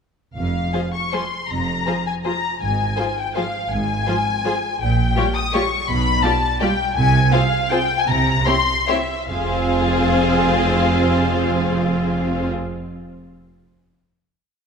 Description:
classical, orchestral ballroom waltz; 140-180 BPM; 3/4; rubato; F minor; A4 = 440 Hz
warm symphonic violin section; melody; 0.4-12.5 s; E5 to Eb6; -22 LUFS; left 4 dB
rich symphonic cello section; bass; 0.4-12.5 s; F2 to C3; -24 LUFS; right 3 dB
warm symphonic double bass section; bass; 0.4-12.5 s; F1 to C2; -24 LUFS; right 2 dB
warm symphonic violin section; second line; 0.7-12.5 s; G4 to D5; -25 LUFS; left 1 dB
rich symphonic viola section; accompaniment; 0.7-12.5 s; F3 to F4; -25 LUFS; equal
wet scoring stage reverb, RT60 1.9 s; minimal, uncompressed stereo recording; -17 LUFS; side -6 dB against mid
0.4-9.3 A section; 9.3-11.7 final chord
slowing down 6.4-9.3
0.4 F5; 2.6 Fm/Ab; 4.8 Gm7b5/Bb; 5.9 G7/B; 7.0 Fm/C; 8.1 C7; 9.3 Fm
| 0.37 0.74 1.14 | 1.51 1.88 2.26 | 2.62 2.99 3.37 | 3.73 4.08 4.46 | 4.82 5.18 5.55 | 5.90 6.25 6.62 | 6.98 7.34 7.72 | 8.09 8.47 8.89 | 9.30 9.71 10.12 | 10.52 10.93 11.34

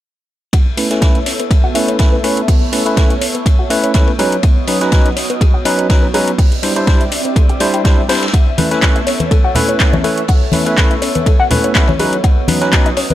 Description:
deep house; 123 BPM; 4/4; swing 54% on 16ths; A4 = 440 Hz
airy breathy pad; sustained chords; 0.5-13.1 s; B3 to E5; -22 LUFS; right 2 dB; chorus, phaser, sidechain pumping
warbly dusty pluck; arpeggios; 0.5-13.1 s; G#4 to G5; -22 LUFS; left 3 dB; chorus, cassette tape, sidechain pumping, tape echo
deep house drum kit; drums; 0.5-13.1 s; handclaps, hi-hat; -20 LUFS; left 1 dB; overdrive
electronic kick drum; drums; 0.5-12.8 s; -12 LUFS; equal; overdrive
vintage drum kit; drums; 0.5-13.1 s; hi-hat, ride cymbal, snare drum; -25 LUFS; left 2 dB; high-pass filter on cymbals, high-pass filter on hats, high-pass filter on snare, high-pass filter on room
barky tine electric piano; stabs; 0.8-12.9 s; F#3 to C5; -17 LUFS; equal; medium stereo tremolo, sidechain pumping, low-pass filter, tape echo
congas; percussion; 8.6-13.1 s; -18 LUFS; left 2 dB
studio reverb; -11 LUFS; side -13 dB against mid
0.5-13.1 A section
filter sweep on tine electric piano 0.5-13.1; filter sweep on synth pluck 0.5-13.1
0.5 B9sus4; 4.2 C#9sus4; 6.4 D9sus4; 8.3 B9sus4; 12.0 C#9sus4
| 0.53 1.02 1.51 1.99 | 2.48 2.97 3.46 3.95 | 4.43 4.92 5.41 5.90 | 6.38 6.87 7.36 7.85 | 8.34 8.82 9.31 9.80 | 10.29 10.78 11.26 11.75 | 12.24 12.73

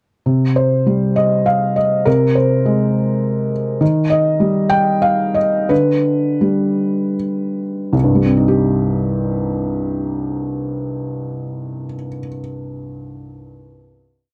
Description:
neoclassical minimalist piano; 76-104 BPM; 3/4; rubato; C minor; A4 = 441 Hz
felt-muted upright piano; solo; 0.3-14.3 s; C2 to G5; -18 LUFS; equal
little or no reverb; dry, close 1970s-style studio recording; -17 LUFS; mono
0.3-7.9 A section; 7.9-12.5 final chord
slowing down 2.9-7.9
0.3 C5; 2.1 Ab/C; 3.8 Eb; 5.7 G/D; 7.9 Cm
| 0.26 0.86 1.47 | 2.06 2.65 3.23 | 3.81 4.41 5.04 | 5.71 6.42 7.16 | 7.94 8.70 9.46 | 10.22 10.97 11.73

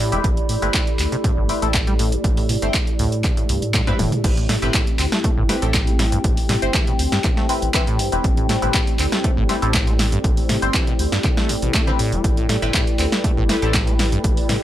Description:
acid house; 120 BPM; 4/4; straight; A4 = 440 Hz
dark analog pad; sustained chords; 0.0-14.6 s; A3 to D5; -29 LUFS; equal; chorus, sidechain pumping
acid bass, saw; riff; 0.0-14.6 s; G2 to C4; -26 LUFS; equal; overdrive, wide subtle chorus, cassette tape, analog delay
band-passed chord stab; stabs; 0.0-13.7 s; C4 to C5; -26 LUFS; left 2 dB; phaser, wide subtle chorus, analog delay
warbly tape-like pad; texture; 0.0-14.6 s; E4 to B5; -27 LUFS; left 1 dB; chorus, built-in reverb, sidechain pumping
round analog bass; bass; 0.1-14.6 s; E1 to A2; -23 LUFS; equal; sidechain pumping
punchy analog drum machine; drums; 0.1-14.6 s; crash cymbal, handclaps, hi-hat, snare drum, toms; -23 LUFS; equal
electronic kick drum; drums; 0.2-14.3 s; -20 LUFS; equal
little or no reverb; dry, gritty hardware recording; -16 LUFS; side -12 dB against mid
0.0-4.2 A section; 4.2-14.6 B section
drum fill 3.7-4.2; band accent 3.7; drop 4.2-14.6
0.0 Am7
| 0.24 0.74 1.24 1.74 | 2.24 2.74 3.24 3.74 | 4.24 4.74 5.24 5.74 | 6.24 6.74 7.24 7.74 | 8.24 8.74 9.24 9.74 | 10.24 10.74 11.24 11.74 | 12.24 12.74 13.24 13.74 | 14.24

